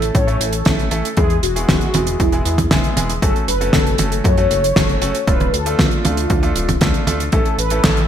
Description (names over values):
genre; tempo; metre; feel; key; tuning
italo disco; 117 BPM; 4/4; straight; A major; A4 = 439 Hz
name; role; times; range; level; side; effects
mellow synth brass; melody; 0.0-8.1 s; E4 to C#5; -21 LUFS; left 1 dB; chorus, phaser, vintage 12-bit sampler grit, digital delay
bright grand piano; stabs; 0.0-8.1 s; G#3 to A4; -24 LUFS; right 2 dB; low-pass filter, digital delay
chorused synth bass; bass; 0.0-8.1 s; D1 to A2; -21 LUFS; equal; tube saturation
damped 70s drum kit; drums; 0.0-8.1 s; handclaps, hi-hat, snare drum, toms; -19 LUFS; right 1 dB; studio reverb, gated reverb
electronic kick drum; drums; 0.1-7.9 s; none; -19 LUFS; equal; overdrive, studio reverb
room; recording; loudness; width
light reverb, small room ambience; bright 1980s-style digital production; -14 LUFS; side -9 dB against mid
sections
0.0-8.1 A section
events
none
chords
0.0 A; 1.2 E; 3.2 F#m; 5.3 Dm; 7.3 A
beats
0.15 0.66 | 1.17 1.69 2.20 2.71 | 3.22 3.74 4.25 4.76 | 5.28 5.79 6.30 6.81 | 7.33 7.84